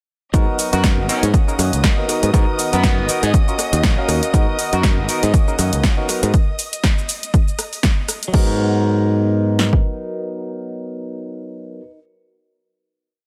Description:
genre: filtered disco house.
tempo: 120 BPM.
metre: 4/4.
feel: swing 56% on 16ths.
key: G# minor.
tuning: A4 = 441 Hz.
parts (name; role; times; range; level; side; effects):
barky tine electric piano; accompaniment; 0.3-11.8 s; B3 to E#5; -27 LUFS; equal; overdrive, phaser, sidechain pumping.
muted chamber violin section; sustained chords; 0.3-8.4 s; D#5 to D#6; -30 LUFS; equal; sidechain pumping.
direct-recorded clean electric guitar; riff; 0.3-12.0 s; D#3 to F#4; -30 LUFS; equal; vintage 12-bit sampler grit, sidechain pumping.
modern bright fingered electric bass; bass; 0.3-9.8 s; G#1 to G#2; -21 LUFS; equal; sidechain pumping.
punchy analog drum machine; drums; 0.3-9.8 s; kick drum, snare drum; -18 LUFS; equal; overdrive.
punchy analog drum machine; drums; 0.3-8.4 s; crash cymbal, hi-hat, rim click, shaker, snare drum; -25 LUFS; equal; overdrive, sidechain pumping on hats, sidechain pumping on perc, sidechain pumping on cymbals.
clear horn section; melody; 0.7-4.8 s; B3 to F#4; -30 LUFS; equal; sidechain pumping, dub echo.
room: little or no reverb.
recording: none.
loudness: -17 LUFS.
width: mono.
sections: 0.3-8.3 drop; 8.3-12.3 final chord.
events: drop 0.3-8.3.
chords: 0.3 G#m7; 1.3 F#6; 2.1 G#m7; 3.3 D#m7; 4.3 G#m7; 5.3 F#6; 6.1 G#m7 (rootless); 7.3 N.C.; 8.3 G#m7.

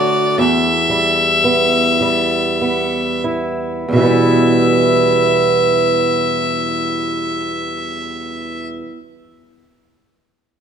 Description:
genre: celtic folk, Celtic slow air.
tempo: 29-41 BPM (dotted quarters).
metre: 6/8.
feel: rubato.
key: E minor.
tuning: A4 = 440 Hz.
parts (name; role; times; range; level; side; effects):
bright fiddle; melody; 0.0-8.7 s; D5 to E5; -17 LUFS; left 3 dB; none.
fingerpicked swing-style acoustic guitar; accompaniment; 0.0-9.0 s; E2 to F#4; -16 LUFS; right 2 dB; none.
room: moderate concert hall reverb, RT60 2.2 s.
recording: dark, warm production.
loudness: -13 LUFS.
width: side -7 dB against mid.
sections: 0.0-3.9 A section; 3.9-7.9 B section.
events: slowing down 0.0-3.9.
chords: 0.4 Em.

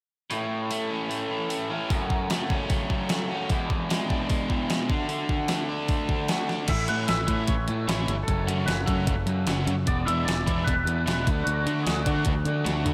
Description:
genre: indie rock.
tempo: 151 BPM.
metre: 4/4.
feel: straight.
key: A major.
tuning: A4 = 444 Hz.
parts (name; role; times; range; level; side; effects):
biting overdriven guitar; riff; 0.3-12.9 s; E2 to F#4; -33 LUFS; equal; none.
overdriven electric guitar; riff; 0.3-12.9 s; E2 to F#4; -34 LUFS; equal; lush chorus, diffuse ambient delay.
crisp 8-bit digital drum machine; drums; 0.3-12.9 s; crash cymbal, hi-hat, kick drum, snare drum, toms; -30 LUFS; equal; none.
twangy electric guitar; melody; 6.7-12.4 s; F#4 to F#5; -33 LUFS; equal; ensemble chorus, diffuse ambient delay.
growling fingered electric bass; bass; 6.7-12.9 s; E1 to D3; -30 LUFS; equal; overdrive.
room: moderate huge ambient reverb, RT60 4.0 s.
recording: dreamy mix soaked in reverb.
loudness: -26 LUFS.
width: mono.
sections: 0.3-6.7 A section; 6.7-12.9 B section.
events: drum fill 6.5, 12.7.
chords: 0.3 A; 1.9 F#m; 3.5 E7; 4.9 D; 6.7 A; 8.3 F#m; 9.9 E7; 11.3 D.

